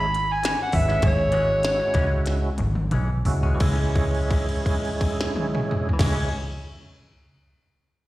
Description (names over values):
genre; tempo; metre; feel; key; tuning
straight-eighth soul blues; 86-104 BPM; 4/4; straight; C# minor; A4 = 440 Hz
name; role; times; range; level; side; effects
overdriven harmonica; melody; 0.0-2.3 s; C#5 to B5; -22 LUFS; equal; slapback echo
percussive tonewheel organ; accompaniment; 0.0-6.3 s; G#3 to B4; -28 LUFS; right 3 dB; slow rotary speaker, overdrive, chorus vibrato, slapback echo
vintage muted fingered electric bass; bass; 0.0-6.3 s; G#1 to C#2; -25 LUFS; equal; none
glitchy drum kit; drums; 0.1-6.2 s; crash cymbal, hi-hat, kick drum, snare drum, toms; -25 LUFS; equal; none
direct-recorded clean electric guitar; stabs; 0.2-6.4 s; E3 to C#4; -34 LUFS; left 4 dB; phaser, slapback echo
room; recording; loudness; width
little or no reverb; live gig heard through the venue's PA, recital hall reverb; -20 LUFS; side -17 dB against mid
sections
0.0-3.6 A section; 3.6-6.4 B section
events
slowing down 0.0-3.6; harmonica solo 0.0-3.6; drum fill 2.3-3.6; held note 3.6-6.0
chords
0.0 C#m